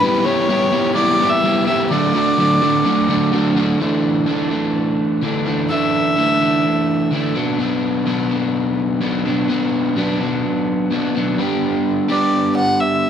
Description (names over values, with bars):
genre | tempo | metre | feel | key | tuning
rock | 126 BPM | 4/4 | straight | D major | A4 = 440 Hz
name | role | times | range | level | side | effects
rich fiddle | melody | 0.0-7.3, 12.1-13.1 s | B4 to F#5 | -18 LUFS | equal | digital delay
crunchy overdriven guitar | riff | 0.0-13.1 s | B2 to G4 | -16 LUFS | equal | none
room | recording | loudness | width
light reverb | dark, warm production | -15 LUFS | side -8 dB against mid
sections
0.0-3.8 A section; 3.8-11.4 B section; 11.4-13.1 C section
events
none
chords
0.0 Em/G; 1.9 D; 3.8 Dsus2; 7.4 Bm; 11.4 G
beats
| 0.03 0.50 0.97 1.44 | 1.91 2.38 2.86 3.33 | 3.80 4.27 4.75 5.22 | 5.69 6.17 6.64 7.12 | 7.59 8.07 8.54 9.02 | 9.49 9.96 10.44 10.91 | 11.39 11.87 12.34 12.82